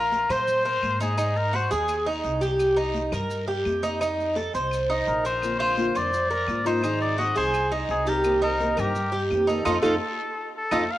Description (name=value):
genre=latin, Cuban son and guajira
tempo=170 BPM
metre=4/4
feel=straight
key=Bb major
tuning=A4 = 440 Hz
part: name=warm trumpet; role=melody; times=0.0-2.0, 5.1-11.0 s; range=G4 to F5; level=-26 LUFS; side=left 2 dB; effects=cassette tape
part: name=Cuban tres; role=arpeggios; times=0.0-10.8 s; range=Eb4 to C5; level=-25 LUFS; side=right 2 dB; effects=cassette tape
part: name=upright bass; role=bass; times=0.0-10.8 s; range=Bb1 to Bb2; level=-31 LUFS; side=equal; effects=none
part: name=congas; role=percussion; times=0.1-10.8 s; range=none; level=-38 LUFS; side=left 3 dB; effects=none
part: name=guiro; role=percussion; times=0.1-10.8 s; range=none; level=-44 LUFS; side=left 11 dB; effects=none
part: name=maracas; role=percussion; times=0.1-10.8 s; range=none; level=-47 LUFS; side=right 2 dB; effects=none
part: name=claves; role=percussion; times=0.3-10.8 s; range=none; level=-41 LUFS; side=left 7 dB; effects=none
part: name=nylon-string guitar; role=accompaniment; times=5.4-10.8 s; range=C3 to Ab4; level=-30 LUFS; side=left 3 dB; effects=cassette tape
room=light reverb, small room ambience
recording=home recording on cassette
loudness=-22 LUFS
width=side -14 dB against mid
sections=0.0-11.0 A section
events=band accent 9.7-11.0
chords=0.0 Bbsus2; 1.2 Ab7; 2.6 Cm7; 4.0 F7; 5.4 Bbadd9; 6.8 Ab7; 8.2 Cm7; 9.7 F7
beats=0.13 0.48 0.83 | 1.18 1.54 1.89 2.24 | 2.59 2.95 3.30 3.65 | 4.00 4.36 4.71 5.07 | 5.42 5.77 6.12 6.48 | 6.83 7.18 7.54 7.89 | 8.24 8.60 8.95 9.30 | 9.66 10.01 10.37 10.72